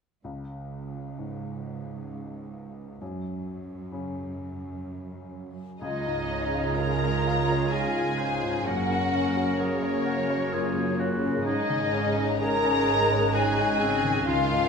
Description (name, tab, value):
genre	cinematic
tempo	64 BPM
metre	3/4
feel	rubato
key	Db major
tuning	A4 = 440 Hz
part	clear grand piano	accompaniment	0.2-14.7 s	Db2 to Gb5	-32 LUFS	left 2 dB	none
part	warm studio cello section	bass	0.2-14.7 s	Db2 to Db3	-34 LUFS	right 5 dB	none
part	warm studio violin section	melody	5.8-14.7 s	Db5 to Bb5	-32 LUFS	left 5 dB	none
part	bright clarinet	second line	5.8-14.7 s	C4 to Ab4	-35 LUFS	left 1 dB	none
part	flute section	second line	5.8-14.7 s	Db5 to Bb5	-32 LUFS	right 1 dB	none
part	rich studio violin section	second line	5.8-14.7 s	Db4 to Bb4	-32 LUFS	left 1 dB	none
part	warm oboe	second line	5.8-14.7 s	F4 to C5	-34 LUFS	right 2 dB	none
part	rich studio viola section	accompaniment	5.8-14.7 s	Db3 to F4	-33 LUFS	right 1 dB	none
part	mellow French horn section	sustained chords	5.8-14.7 s	Db3 to F4	-32 LUFS	left 2 dB	none
part	warm studio double bass section	bass	5.8-14.7 s	Gb1 to Db2	-36 LUFS	right 5 dB	none
room	wet scoring stage reverb, RT60 1.7 s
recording	minimal, uncompressed stereo recording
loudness	-24 LUFS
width	side -5 dB against mid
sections	0.2-5.8 A section; 5.8-14.7 B section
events	none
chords	0.2 Db5; 3.0 Gb5; 5.8 Dbadd9; 8.7 Gb; 11.5 Absus4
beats	| 0.24 1.18 2.10 | 3.01 3.92 4.86 | 5.82 6.79 7.72 | 8.66 9.60 10.53 | 11.46 12.41 13.34 | 14.27